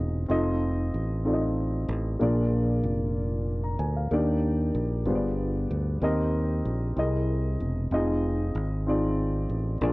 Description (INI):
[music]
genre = slow gospel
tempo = 63 BPM (dotted quarters)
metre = 6/8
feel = straight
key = unclear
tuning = A4 = 439 Hz
[part]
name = dark concert grand piano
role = accompaniment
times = 0.0-9.9 s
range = G2 to Bb5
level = -27 LUFS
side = equal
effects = none
[part]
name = fingered electric bass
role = bass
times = 0.0-9.9 s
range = Fb1 to Eb2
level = -28 LUFS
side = equal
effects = none
[sound]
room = light reverb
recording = worn, warbling old tape, cassette tape, warbly pitch drift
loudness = -24 LUFS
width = side -21 dB against mid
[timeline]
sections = 0.0-9.9 A section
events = none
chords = 0.3 F7; 2.2 Bb7; 4.1 Ebmaj7; 5.1 G7b9; 6.0 Cm7/Eb; 7.0 C7alt; 7.9 Fm7